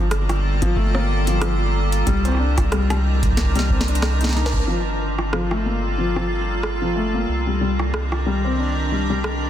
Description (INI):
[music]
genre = IDM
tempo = 92 BPM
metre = 4/4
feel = swing 56% on 16ths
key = G minor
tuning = A4 = 440 Hz
[part]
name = icy glass pad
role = sustained chords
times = 0.0-9.5 s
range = Eb3 to Bb4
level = -25 LUFS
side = right 1 dB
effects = chorus, built-in reverb
[part]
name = felt-muted upright piano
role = arpeggios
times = 0.0-9.2 s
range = F3 to Eb4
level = -25 LUFS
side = left 3 dB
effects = low-pass filter, digital delay
[part]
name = round analog bass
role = bass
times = 0.0-9.5 s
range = G1 to C2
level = -22 LUFS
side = equal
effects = none
[part]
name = booming analog drum machine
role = drums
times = 0.1-9.4 s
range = hi-hat, rim click, snare drum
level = -27 LUFS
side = equal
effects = digital delay
[part]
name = electronic kick drum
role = drums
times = 0.6-4.6 s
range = none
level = -23 LUFS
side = equal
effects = none
[sound]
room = light reverb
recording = dense, heavily limited modern master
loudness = -18 LUFS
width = side -11 dB against mid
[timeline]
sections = 0.0-4.7 A section; 4.7-9.5 B section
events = drum fill 3.4-4.7; band accent 4.5-4.8; filter sweep on felt piano 4.7-9.5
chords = 0.0 Gm9; 2.1 Cm9; 4.7 Gm9; 7.3 Cm9